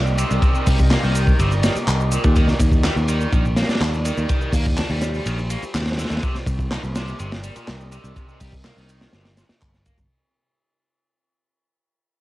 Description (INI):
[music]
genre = breakbeat, breaks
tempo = 124 BPM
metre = 4/4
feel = straight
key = C minor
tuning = A4 = 439 Hz
[part]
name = deep dark ambient pad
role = sustained chords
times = 0.0-10.1 s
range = C4 to Eb5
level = -30 LUFS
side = right 1 dB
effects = chorus, built-in reverb, sidechain pumping, cassette tape
[part]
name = picked electric bass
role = bass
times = 0.0-10.1 s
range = G1 to Eb2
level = -21 LUFS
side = equal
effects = none
[part]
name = house drum kit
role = drums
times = 0.1-10.1 s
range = handclaps, ride cymbal, shaker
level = -31 LUFS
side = equal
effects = cassette tape
[part]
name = biting overdriven guitar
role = riff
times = 0.2-10.0 s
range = Bb2 to D4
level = -29 LUFS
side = equal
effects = vintage 12-bit sampler grit, cassette tape, tape echo
[part]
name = crunchy breakbeat drum kit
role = drums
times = 0.2-10.1 s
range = hi-hat, kick drum, ride cymbal, snare drum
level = -21 LUFS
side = equal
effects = cassette tape
[sound]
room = little or no reverb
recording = home recording on cassette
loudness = -17 LUFS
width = side -17 dB against mid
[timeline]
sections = 0.0-10.1 A section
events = drop 0.0-10.1; fade-out 2.4-10.1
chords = 0.0 Cm7; 2.4 Ebmaj7; 6.2 Cm7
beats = | 0.42 0.91 1.39 1.88 | 2.36 2.85 3.33 3.81 | 4.30 4.78 5.26 5.75 | 6.23 6.72 7.20 7.68 | 8.17 8.65 9.13 9.62